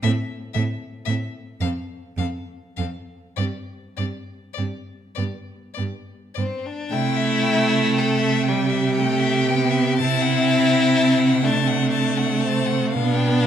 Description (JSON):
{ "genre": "classical, slow romantic movement for string quartet", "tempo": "33-42 BPM (dotted quarters)", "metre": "6/8", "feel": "rubato", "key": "C major", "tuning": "A4 = 440 Hz", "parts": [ { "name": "rich violin", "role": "melody", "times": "0.0-13.5 s", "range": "D5 to A5", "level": "-28 LUFS", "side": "left 10 dB", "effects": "none" }, { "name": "rich violin", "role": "second line", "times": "0.0-13.5 s", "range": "C4 to A4", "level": "-24 LUFS", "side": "left 3 dB", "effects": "none" }, { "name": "clear cello", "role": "bass", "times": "0.0-13.5 s", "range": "F2 to C3", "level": "-23 LUFS", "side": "right 4 dB", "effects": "none" }, { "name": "rich viola", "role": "accompaniment", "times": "0.1-13.5 s", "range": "G3 to C4", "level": "-24 LUFS", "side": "equal", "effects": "none" } ], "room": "wet recital hall reverb, RT60 1.6 s", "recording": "none", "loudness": "-19 LUFS", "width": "side -9 dB against mid", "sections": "0.0-6.9 A section; 6.9-13.5 B section", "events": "none", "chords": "0.0 Am; 1.6 F5; 3.4 Gsus4; 5.2 G; 6.9 C; 10.0 D7/C; 12.9 G7/B" }